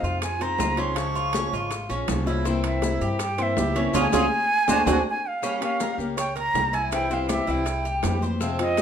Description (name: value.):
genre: latin, Cuban son and guajira.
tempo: 161 BPM.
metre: 4/4.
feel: straight.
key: unclear.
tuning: A4 = 443 Hz.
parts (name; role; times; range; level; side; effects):
jazz flute; melody; 0.0-8.8 s; Eb5 to Db6; -26 LUFS; right 2 dB; none.
picked acoustic archtop guitar; accompaniment; 0.0-8.8 s; C3 to G4; -29 LUFS; left 4 dB; none.
Cuban tres; arpeggios; 0.0-8.8 s; C4 to Db5; -28 LUFS; right 2 dB; none.
upright bass; bass; 0.0-8.8 s; Ab1 to G2; -29 LUFS; equal; none.
congas; percussion; 0.0-8.8 s; none; -33 LUFS; left 2 dB; none.
maracas; percussion; 0.0-8.8 s; none; -39 LUFS; left 8 dB; none.
bongos; percussion; 0.2-8.8 s; none; -35 LUFS; left 8 dB; none.
timbales; percussion; 0.2-8.8 s; none; -33 LUFS; right 9 dB; none.
room: moderate large studio reverb, RT60 0.8 s.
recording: minimal, uncompressed stereo recording.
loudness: -22 LUFS.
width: side -8 dB against mid.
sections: 0.0-5.4 A section; 5.4-8.8 B section.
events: band accent 3.9-5.4.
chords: 0.0 Fm7; 1.0 Db; 2.5 C7; 3.9 Db; 4.7 D7; 5.4 Gdim; 6.9 C.